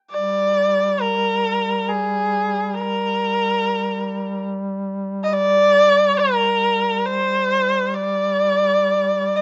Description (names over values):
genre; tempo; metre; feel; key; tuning
caucasian folk; free time; none; none; G phrygian; A4 = 440 Hz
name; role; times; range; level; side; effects
rich erhu; melody; 0.1-9.4 s; Ab4 to Eb5; -20 LUFS; equal; slapback echo
warm duduk; drone; 0.1-9.4 s; G3; -28 LUFS; equal; none
room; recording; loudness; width
little or no reverb; recorded outdoors, with no room sound, nothing above 7.8 kHz; -19 LUFS; mono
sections
0.1-9.4 A section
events
none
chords
none